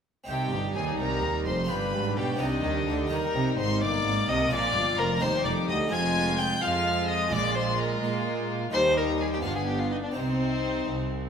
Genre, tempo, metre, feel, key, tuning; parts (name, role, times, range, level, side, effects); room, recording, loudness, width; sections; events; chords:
classical, baroque-style concerto movement with solo episodes; 85 BPM (dotted quarters); 6/8; straight; C minor; A4 = 440 Hz
harpsichord; accompaniment; 0.2-11.3 s; C2 to Ab4; -35 LUFS; equal
rich chamber violin section; melody; 0.3-11.3 s; C5 to Ab6; -32 LUFS; left 4 dB
rich violin; melody; 0.3-11.3 s; C4 to Ab5; -30 LUFS; left 2 dB
rich chamber violin section; second line; 0.3-11.3 s; D4 to F4; -33 LUFS; left 4 dB
dark chamber viola section; accompaniment; 0.3-11.3 s; F3 to C4; -34 LUFS; right 1 dB
rich chamber double bass section; bass; 0.3-11.3 s; F1 to Bb2; -33 LUFS; right 4 dB
warm chamber cello section; bass; 0.3-11.3 s; C2 to Bb3; -32 LUFS; right 3 dB
wet recital hall reverb, RT60 1.8 s; minimal, uncompressed stereo recording; -24 LUFS; side -7 dB against mid
0.3-11.3 A section
0.3 Cm; 1.7 G7; 2.4 Cm; 3.1 Eb; 4.5 Bb7; 5.2 Eb; 5.9 Fm; 7.3 Bb5; 8.7 Eb; 9.4 G; 10.1 Cm